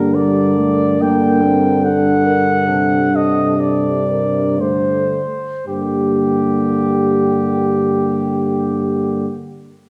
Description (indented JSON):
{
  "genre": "classical, hymn-like piece for brass band",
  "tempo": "53-74 BPM",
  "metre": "4/4",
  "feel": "rubato",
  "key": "G minor",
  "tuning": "A4 = 439 Hz",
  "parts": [
    { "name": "warm cornet", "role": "melody", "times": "0.0-9.3 s", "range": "G4 to G5", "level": "-23 LUFS", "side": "equal", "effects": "none" },
    { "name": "mellow French horn section", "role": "second line", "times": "0.0-9.3 s", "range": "G4 to C5", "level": "-24 LUFS", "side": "equal", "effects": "none" },
    { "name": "clear trombone", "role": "accompaniment", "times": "0.0-9.3 s", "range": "C3 to D3", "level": "-26 LUFS", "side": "equal", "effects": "none" },
    { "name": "dark euphonium", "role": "accompaniment", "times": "0.0-9.3 s", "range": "G3 to D4", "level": "-23 LUFS", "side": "equal", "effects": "none" },
    { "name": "warm tuba", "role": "bass", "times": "0.0-9.3 s", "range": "G2", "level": "-21 LUFS", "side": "equal", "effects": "none" }
  ],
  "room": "wet recital hall reverb, RT60 1.3 s",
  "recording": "recorded in a church or concert hall",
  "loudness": "-16 LUFS",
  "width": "mono",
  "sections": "0.0-5.7 A section; 5.7-9.8 B section",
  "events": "slowing down 0.0-5.7",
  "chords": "0.0 Gm; 1.8 D7/G; 5.7 Gm",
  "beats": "0.14 1.01 | 1.84 2.69 3.60 4.59 | 5.67 6.72 7.75 8.77"
}